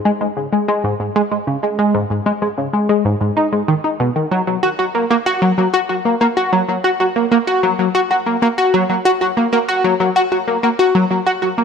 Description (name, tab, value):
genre	ambient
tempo	95 BPM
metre	4/4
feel	straight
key	unclear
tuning	A4 = 441 Hz
part	tight sequenced synth	solo	0.1-11.6 s	G#2 to F#4	-14 LUFS	equal	chorus, ping-pong delay
room	moderate plate reverb, RT60 2.6 s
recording	none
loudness	-14 LUFS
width	side -6 dB against mid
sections	0.0-11.6 A section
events	none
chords	none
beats	0.53 1.16 | 1.79 2.42 3.05 3.69 | 4.32 4.95 5.58 6.21 | 6.84 7.47 8.11 8.74 | 9.37 10.00 10.63 11.26